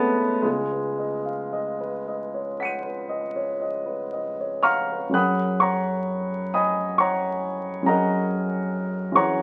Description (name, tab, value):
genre	classical, impressionist solo piano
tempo	36-46 BPM (dotted quarters)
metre	9/8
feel	rubato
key	F# major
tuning	A4 = 440 Hz
part	warm concert grand piano	solo	0.0-9.4 s	C#2 to D#7	-25 LUFS	equal	none
room	moderate studio reverb, RT60 0.8 s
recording	very old 78 rpm record, vinyl crackle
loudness	-25 LUFS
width	mono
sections	0.0-5.2 A section; 5.2-9.4 B section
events	none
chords	0.4 C#9sus4; 5.2 F#add9